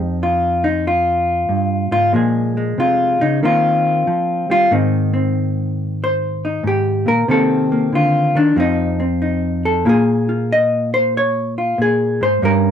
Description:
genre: solo jazz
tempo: 93 BPM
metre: 4/4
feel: swing 66% on 8ths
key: unclear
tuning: A4 = 440 Hz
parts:
  - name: hollow-body jazz guitar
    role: solo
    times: 0.0-12.7 s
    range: F2 to Eb5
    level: -14 LUFS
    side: equal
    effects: none
room: light reverb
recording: dry, close 1970s-style studio recording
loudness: -14 LUFS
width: side -8 dB against mid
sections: 0.0-12.7 A section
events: hollow-body jazz guitar solo 0.0-12.7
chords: 0.0 F7sus2; 2.1 Bbm7; 3.4 Eb69; 4.7 Ab; 7.3 Cm7; 8.6 F5; 9.8 Bb5

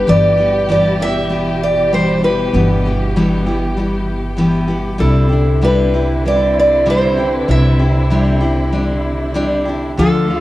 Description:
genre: acoustic folk duo or small band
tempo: 97 BPM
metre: 4/4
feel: straight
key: unclear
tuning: A4 = 440 Hz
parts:
  - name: picked steel-string acoustic guitar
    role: melody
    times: 0.0-10.4 s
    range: A4 to E5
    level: -16 LUFS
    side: equal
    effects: cassette tape, analog delay
  - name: picked steel-string acoustic guitar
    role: accompaniment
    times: 0.0-10.4 s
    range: G2 to A4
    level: -17 LUFS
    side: left 1 dB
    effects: cassette tape
  - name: warm studio string section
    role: sustained chords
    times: 0.0-10.4 s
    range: B2 to G4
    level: -23 LUFS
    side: equal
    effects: cassette tape
  - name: upright bass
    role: bass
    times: 0.0-10.4 s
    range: G1 to D2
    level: -18 LUFS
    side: equal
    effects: none
room: light reverb, studio ambience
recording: home recording on cassette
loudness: -12 LUFS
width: side -16 dB against mid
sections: 0.0-10.4 A section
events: none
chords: 0.1 Em/G; 5.0 Cadd9

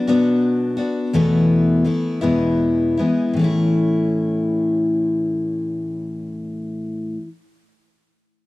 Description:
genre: folk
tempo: 51-58 BPM (dotted quarters)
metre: 6/8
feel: straight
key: A major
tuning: A4 = 438 Hz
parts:
  - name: picked steel-string acoustic guitar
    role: accompaniment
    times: 0.0-7.3 s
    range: E2 to F#4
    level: -17 LUFS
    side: left 1 dB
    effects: none
room: little or no reverb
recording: dry, close 1970s-style studio recording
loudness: -17 LUFS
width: side -19 dB against mid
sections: 0.0-3.4 A section; 3.4-8.1 B section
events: slowing down 0.0-3.4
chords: 0.0 Bm; 1.1 Esus4; 2.2 E; 3.4 A

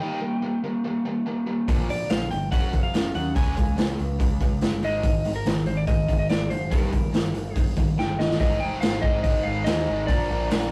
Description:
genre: classic rock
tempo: 143 BPM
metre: 4/4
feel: straight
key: unclear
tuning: A4 = 441 Hz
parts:
  - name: electric slide guitar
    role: melody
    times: 0.0-10.7 s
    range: Bb4 to Ab5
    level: -32 LUFS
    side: equal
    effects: none
  - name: overdriven electric guitar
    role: riff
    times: 0.0-10.7 s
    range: G2 to Bb4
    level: -30 LUFS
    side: equal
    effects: spring reverb
  - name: growling picked electric bass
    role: bass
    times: 1.7-10.7 s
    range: F1 to Eb2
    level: -33 LUFS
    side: equal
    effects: overdrive
  - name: raw garage drum kit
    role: drums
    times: 1.7-10.6 s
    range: hi-hat, kick drum, snare drum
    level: -26 LUFS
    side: equal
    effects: none
room: moderate studio reverb, RT60 0.6 s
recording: rough rehearsal-room recording, warm saturation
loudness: -24 LUFS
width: mono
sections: 0.0-8.4 A section; 8.4-10.7 B section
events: drum fill 8.0-8.4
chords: 0.0 Eb/G (rootless); 1.7 Bb; 2.5 Gb5; 3.4 Db5; 4.8 Ab5; 6.7 Eb/G; 8.4 Ab; 10.1 Bb

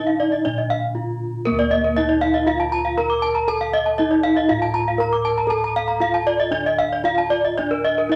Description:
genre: Balinese gamelan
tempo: 119 BPM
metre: 4/4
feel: straight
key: D pelog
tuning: A4 = 440 Hz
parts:
  - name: gamelan-type bronze metallophone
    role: melody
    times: 0.0-8.2 s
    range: Bb3 to Bb4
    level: -24 LUFS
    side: equal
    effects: none
  - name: gamelan-type bronze metallophone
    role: arpeggios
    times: 0.0-8.2 s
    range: Bb4 to D6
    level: -26 LUFS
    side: equal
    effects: none
  - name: gamelan-type bossed gongs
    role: bass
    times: 0.0-8.2 s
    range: D2 to Bb4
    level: -31 LUFS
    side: equal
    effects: none
  - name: gamelan-type bronze metallophone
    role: arpeggios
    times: 0.2-8.0 s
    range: Bb4 to Bb5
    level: -24 LUFS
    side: equal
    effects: none
room: wet club reverb, RT60 0.8 s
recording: none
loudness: -20 LUFS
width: mono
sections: 0.0-8.2 A section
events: break 0.7-1.5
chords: none

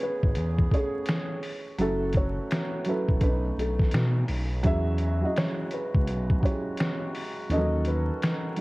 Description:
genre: lo-fi hip hop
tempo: 84 BPM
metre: 4/4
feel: swing 64% on 16ths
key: unclear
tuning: A4 = 440 Hz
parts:
  - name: felt-muted upright piano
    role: melody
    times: 0.0-8.5 s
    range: G#4 to E5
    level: -33 LUFS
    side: equal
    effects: none
  - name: dark upright piano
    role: accompaniment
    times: 0.0-8.6 s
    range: E3 to C#5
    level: -31 LUFS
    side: right 2 dB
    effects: cassette tape
  - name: mellow woodwind section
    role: sustained chords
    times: 0.0-8.6 s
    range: C#3 to G#4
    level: -40 LUFS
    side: equal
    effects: none
  - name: lo-fi sampler-style drum kit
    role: drums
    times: 0.0-8.6 s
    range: finger snaps, hi-hat, kick drum, snare drum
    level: -27 LUFS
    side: equal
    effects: none
  - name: smooth gliding synth bass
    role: bass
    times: 0.2-8.1 s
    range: E1 to B2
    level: -27 LUFS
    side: equal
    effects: none
room: small room reverb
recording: worn, warbling old tape, cassette tape, vinyl crackle, warbly pitch drift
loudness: -24 LUFS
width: side -21 dB against mid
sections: 0.0-8.6 A section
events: none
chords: 0.0 Amaj9; 1.8 F#m7; 3.2 B9; 4.6 E69; 7.5 D#m7b5

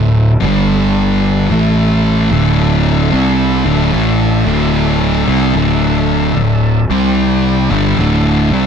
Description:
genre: metal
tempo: 74 BPM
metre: 4/4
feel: swing 65% on 8ths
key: unclear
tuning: A4 = 440 Hz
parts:
  - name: tonewheel organ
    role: sustained chords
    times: 0.0-8.7 s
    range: D3 to E5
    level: -23 LUFS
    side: equal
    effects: slow rotary speaker
  - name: thick fuzz guitar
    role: riff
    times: 0.0-8.7 s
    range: D2 to C4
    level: -14 LUFS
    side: left 8 dB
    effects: distortion
  - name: thick fuzz guitar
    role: riff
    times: 0.0-8.7 s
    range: D2 to C4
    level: -15 LUFS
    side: right 10 dB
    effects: distortion
  - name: fuzz fingered electric bass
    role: bass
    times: 0.0-8.7 s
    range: D1 to C2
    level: -17 LUFS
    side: equal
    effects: overdrive
room: light reverb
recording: dark, warm production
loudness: -10 LUFS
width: side -7 dB against mid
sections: 0.0-8.7 A section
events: none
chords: 0.3 G5; 1.5 A5; 2.3 D5

